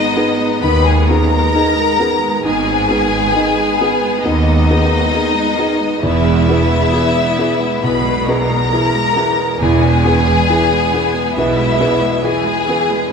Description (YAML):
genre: cinematic, emotional film score for orchestra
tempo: 67 BPM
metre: 4/4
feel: rubato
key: unclear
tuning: A4 = 440 Hz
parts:
  - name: rich studio violin section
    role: melody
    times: 0.0-13.1 s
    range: D#5 to B5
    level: -19 LUFS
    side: left 4 dB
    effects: none
  - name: rich studio violin section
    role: second line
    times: 0.0-13.1 s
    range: D#4 to B4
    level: -20 LUFS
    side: left 4 dB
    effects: none
  - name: felt-muted upright piano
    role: accompaniment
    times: 0.0-13.1 s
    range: E2 to G#4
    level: -18 LUFS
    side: right 1 dB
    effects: none
  - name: rich studio viola section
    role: accompaniment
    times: 0.0-13.1 s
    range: D#3 to B3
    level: -21 LUFS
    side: right 1 dB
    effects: none
  - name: clear studio cello section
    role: bass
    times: 0.6-12.1 s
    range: D#2 to B2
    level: -21 LUFS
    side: right 2 dB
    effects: none
  - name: rich studio double bass section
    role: bass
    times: 0.6-12.1 s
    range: E1 to D#2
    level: -20 LUFS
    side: right 2 dB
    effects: none
room: wet scoring stage reverb, RT60 1.5 s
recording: minimal, uncompressed stereo recording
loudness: -12 LUFS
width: side -6 dB against mid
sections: 0.0-13.1 A section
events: none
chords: 0.0 G#m; 6.0 E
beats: 0.62 1.54 | 2.45 3.36 4.25 5.13 | 6.03 6.93 7.83 8.72 | 9.60 10.48 11.36 12.23 | 13.12